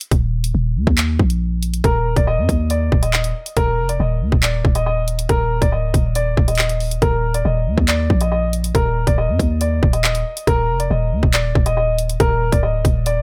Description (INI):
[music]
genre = hip hop, drill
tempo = 139 BPM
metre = 4/4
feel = half-time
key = unclear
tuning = A4 = 440 Hz
[part]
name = drill drum kit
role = drums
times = 0.0-13.2 s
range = handclaps, hi-hat, kick drum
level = -20 LUFS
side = equal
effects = none
[part]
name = growling 808-style bass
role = bass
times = 0.1-13.2 s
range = D1 to Gb2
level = -21 LUFS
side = equal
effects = none
[part]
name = dark baby grand piano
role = melody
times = 1.8-13.2 s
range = Bb4 to Eb5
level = -24 LUFS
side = equal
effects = low-pass filter
[sound]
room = little or no reverb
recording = none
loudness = -18 LUFS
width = mono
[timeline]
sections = 0.0-13.2 A section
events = break 0.0-1.8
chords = 0.1 Eb5; 3.6 Bbadd11 (rootless); 7.0 Eb5; 10.5 Bbadd11